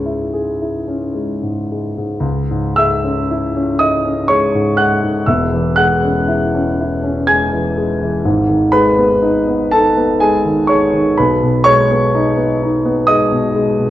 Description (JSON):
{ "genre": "classical, romantic nocturne for solo piano", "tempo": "60 BPM", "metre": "3/4", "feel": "uneven beats, rubato", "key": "C# minor", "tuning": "A4 = 442 Hz", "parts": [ { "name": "dark concert grand piano", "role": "solo", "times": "0.0-13.9 s", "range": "E1 to G#6", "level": "-13 LUFS", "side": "equal", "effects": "none" } ], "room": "wet recital hall reverb, RT60 1.6 s", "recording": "worn, warbling old tape, cassette tape, warbly pitch drift", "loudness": "-13 LUFS", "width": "side -13 dB against mid", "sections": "0.0-2.2 A section; 2.2-13.9 B section", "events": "none", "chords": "0.0 C#m; 5.3 C#m/E; 8.2 G#m; 11.2 G#m/B", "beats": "0.07 1.15 | 2.23 3.27 4.28 | 5.27 6.28 7.27 | 8.25 9.22 10.21 | 11.17 12.13 13.10" }